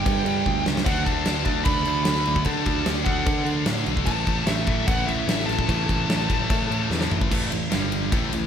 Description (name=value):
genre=hard rock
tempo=149 BPM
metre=4/4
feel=straight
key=unclear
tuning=A4 = 444 Hz
part: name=high-gain lead guitar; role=melody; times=0.0-6.8 s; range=E5 to B5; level=-28 LUFS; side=equal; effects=distortion, digital delay
part: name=heavy high-gain guitar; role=riff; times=0.0-8.5 s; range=G2 to D4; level=-31 LUFS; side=left 13 dB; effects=distortion
part: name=heavy high-gain guitar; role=riff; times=0.0-8.5 s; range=G2 to D4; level=-30 LUFS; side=left 1 dB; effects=distortion
part: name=overdriven semi-hollow guitar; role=riff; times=0.0-8.5 s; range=G2 to D4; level=-30 LUFS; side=right 12 dB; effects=none
part: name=modern bright picked electric bass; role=bass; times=0.0-8.5 s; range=G1 to D3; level=-28 LUFS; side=equal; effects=none
part: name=huge arena drum kit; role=drums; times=0.1-8.4 s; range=crash cymbal, kick drum, ride cymbal, snare drum, splash cymbal, toms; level=-25 LUFS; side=equal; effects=none
room=light reverb, studio ambience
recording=none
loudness=-20 LUFS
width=side -8 dB against mid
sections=0.0-7.3 A section; 7.3-8.5 B section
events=drum fill 0.5-0.9, 6.9-7.3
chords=0.0 G5; 0.9 D5; 4.1 A5; 7.7 G5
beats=0.05 0.46 | 0.86 1.26 1.66 2.06 | 2.47 2.87 3.27 3.68 | 4.08 4.48 4.88 5.29 | 5.69 6.10 6.50 6.90 | 7.31 7.71 8.12